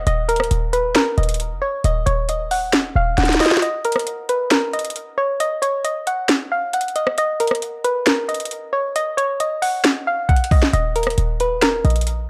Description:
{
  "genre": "hip hop, trap",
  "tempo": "135 BPM",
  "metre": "4/4",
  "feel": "half-time",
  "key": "Eb minor",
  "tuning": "A4 = 440 Hz",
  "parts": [
    { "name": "hollow square pluck", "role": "melody", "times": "0.0-12.3 s", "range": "Bb4 to Gb5", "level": "-23 LUFS", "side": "equal", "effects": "chorus, low-pass filter, tape echo" },
    { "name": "short 808-style bass", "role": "bass", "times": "0.0-3.4, 10.7-12.3 s", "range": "Eb1 to Bb1", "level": "-23 LUFS", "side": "equal", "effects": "none" },
    { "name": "trap drum kit", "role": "drums", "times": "0.1-12.2 s", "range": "finger snaps, hi-hat, kick drum, rim click, snare drum", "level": "-21 LUFS", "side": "equal", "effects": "none" }
  ],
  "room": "digital ambience",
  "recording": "dry, gritty hardware recording, cassette tape",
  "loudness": "-19 LUFS",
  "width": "mono",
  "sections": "0.0-12.3 A section",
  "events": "drum fill 3.2-3.6, 10.3-10.7; kick muted 3.6-10.7",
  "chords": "0.0 Ebm; 3.6 N.C.; 10.7 Eb5"
}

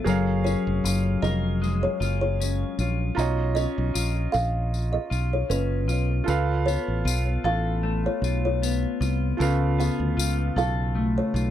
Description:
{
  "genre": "indie pop, bedroom pop",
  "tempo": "77 BPM",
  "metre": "4/4",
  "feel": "swing 55% on 16ths",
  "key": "unclear",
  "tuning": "A4 = 440 Hz",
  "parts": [
    { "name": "clean electric guitar", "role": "accompaniment", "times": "0.0-11.5 s", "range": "Db3 to Cb5", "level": "-29 LUFS", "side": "left 5 dB", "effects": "wide subtle chorus, warbly pitch drift" },
    { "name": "warm upright piano", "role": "accompaniment", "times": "0.0-11.5 s", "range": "F4 to Bb5", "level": "-32 LUFS", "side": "right 7 dB", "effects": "cassette tape" },
    { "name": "fingered electric bass", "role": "bass", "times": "0.1-11.5 s", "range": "F1 to D2", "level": "-25 LUFS", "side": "equal", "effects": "none" },
    { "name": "tambourine", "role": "percussion", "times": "0.1-11.5 s", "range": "none", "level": "-36 LUFS", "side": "left 11 dB", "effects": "none" },
    { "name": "kalimba", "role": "second line", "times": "0.4-11.3 s", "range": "Cb5 to F5", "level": "-30 LUFS", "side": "equal", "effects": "lush chorus, tape echo" }
  ],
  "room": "little or no reverb",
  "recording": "dry, close 1970s-style studio recording",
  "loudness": "-22 LUFS",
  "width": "side -11 dB against mid",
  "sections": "0.0-11.5 A section",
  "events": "none",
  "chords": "0.1 Gbmaj9; 3.2 Cbmaj9#11; 6.3 Dbaug7"
}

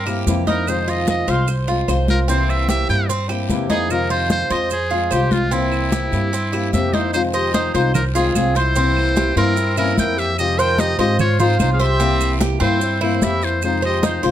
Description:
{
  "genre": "latin, Cuban son and guajira",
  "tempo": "148 BPM",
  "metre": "4/4",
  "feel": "straight",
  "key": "F minor",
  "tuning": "A4 = 440 Hz",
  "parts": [
    { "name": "trumpet with metal mute", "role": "melody", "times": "0.0-14.2 s", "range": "E4 to G5", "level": "-22 LUFS", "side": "equal", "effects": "none" },
    { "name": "Cuban tres", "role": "arpeggios", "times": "0.0-14.3 s", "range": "C4 to C5", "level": "-23 LUFS", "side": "right 4 dB", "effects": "none" },
    { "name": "upright bass", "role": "bass", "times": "0.0-14.3 s", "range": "C2 to Ab2", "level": "-21 LUFS", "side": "right 1 dB", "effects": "none" },
    { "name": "fingerpicked old ladder-braced acoustic guitar", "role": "accompaniment", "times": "0.1-14.3 s", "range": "C3 to F4", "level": "-23 LUFS", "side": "left 4 dB", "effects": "none" },
    { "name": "claves", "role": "percussion", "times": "0.1-13.8 s", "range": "none", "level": "-34 LUFS", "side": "right 6 dB", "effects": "none" },
    { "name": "congas", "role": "percussion", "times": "0.1-14.3 s", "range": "none", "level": "-23 LUFS", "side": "left 2 dB", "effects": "none" },
    { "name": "maracas", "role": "percussion", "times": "0.1-14.3 s", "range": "none", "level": "-34 LUFS", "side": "right 11 dB", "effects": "none" },
    { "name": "guiro", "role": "percussion", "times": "0.3-14.3 s", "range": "none", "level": "-36 LUFS", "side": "left 8 dB", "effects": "none" },
    { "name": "hollow concert flute", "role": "second line", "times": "6.7-14.2 s", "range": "C4 to Bb4", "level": "-26 LUFS", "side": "left 5 dB", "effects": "none" }
  ],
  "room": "light reverb",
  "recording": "close, detailed microphones",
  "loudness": "-16 LUFS",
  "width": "side -11 dB against mid",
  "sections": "0.0-7.1 A section; 7.1-14.3 B section",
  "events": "none",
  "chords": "0.0 C7; 0.7 Fm7; 2.3 C7; 3.9 Fm7; 5.5 C7; 7.1 Fm7; 8.8 C7; 10.4 Fm7; 12.0 C7; 13.6 Fm7"
}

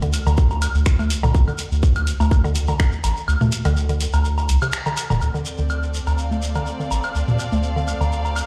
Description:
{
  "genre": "minimal techno",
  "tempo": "124 BPM",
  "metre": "4/4",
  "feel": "swing 54% on 16ths",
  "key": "D minor",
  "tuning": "A4 = 440 Hz",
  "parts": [
    { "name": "mallet-like synth pluck", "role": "riff", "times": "0.0-8.1 s", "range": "C3 to A3", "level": "-30 LUFS", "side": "equal", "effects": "chorus, sidechain pumping, delay" },
    { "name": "saturated sub bass", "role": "bass", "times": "0.0-8.4 s", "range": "D1 to D2", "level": "-22 LUFS", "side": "equal", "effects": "sidechain pumping" },
    { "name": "garage drum kit", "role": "drums", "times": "0.0-5.1 s", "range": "finger snaps, hi-hat", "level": "-31 LUFS", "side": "equal", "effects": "low-pass filter on hats, studio reverb, low-pass filter on snare" },
    { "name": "shekere", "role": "percussion", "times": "0.0-8.5 s", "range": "none", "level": "-36 LUFS", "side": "equal", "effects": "none" },
    { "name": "electronic woodblock and toms", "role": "percussion", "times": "0.1-8.5 s", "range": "none", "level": "-28 LUFS", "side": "equal", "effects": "studio reverb" },
    { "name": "electronic kick drum", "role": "drums", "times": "0.4-2.9 s", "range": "none", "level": "-18 LUFS", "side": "equal", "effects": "studio reverb" },
    { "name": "rich studio string section", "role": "texture", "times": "5.2-8.5 s", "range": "C4 to F5", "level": "-32 LUFS", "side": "equal", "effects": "sidechain pumping" }
  ],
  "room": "light reverb, digital ambience",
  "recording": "played on a big sound system in a bare room, stone room reverb",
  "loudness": "-20 LUFS",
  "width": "mono",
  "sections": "0.0-5.2 A section; 5.2-8.5 B section",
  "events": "kick drops out 3.3-5.2; band accent 4.7; filter sweep on synth arpeggio sound 5.2-8.5",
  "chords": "0.0 D5; 5.2 Dm7"
}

